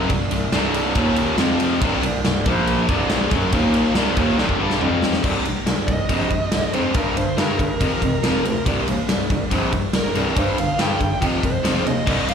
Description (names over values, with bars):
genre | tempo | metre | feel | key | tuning
hard rock | 140 BPM | 4/4 | straight | C minor | A4 = 440 Hz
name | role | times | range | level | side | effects
cranked stack guitar | riff | 0.0-12.3 s | C2 to Bb3 | -25 LUFS | right 10 dB | overdrive, slapback echo
distorted electric guitar | riff | 0.0-12.3 s | C2 to Bb3 | -24 LUFS | left 10 dB | overdrive
heavy high-gain guitar | riff | 0.0-5.2, 12.1-12.3 s | C2 to Eb4 | -26 LUFS | left 1 dB | distortion, slapback echo
clear bass clarinet | bass | 0.0-12.2 s | Bb1 to G2 | -24 LUFS | equal | none
huge arena drum kit | drums | 0.1-12.3 s | crash cymbal, kick drum, ride cymbal, snare drum, toms | -22 LUFS | equal | none
bluesy overdriven lead guitar | melody | 5.9-12.3 s | Bb4 to G5 | -26 LUFS | right 2 dB | distortion, slapback echo, analog delay
room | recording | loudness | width
small room ambience | live gig heard through the venue's PA, club reverb | -17 LUFS | side -7 dB against mid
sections
0.0-5.2 A section; 5.2-12.3 B section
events
drum fill 4.4-5.2; lead electric guitar solo 5.2-12.3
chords
0.0 C5; 1.0 Eb5; 1.4 F5; 1.8 C5; 2.5 Bb5; 2.9 C5; 3.5 Eb5; 4.0 Cm; 4.8 F5; 5.2 Cm; 7.0 Gm; 7.8 F5; 8.7 C5; 10.4 G5; 11.2 F5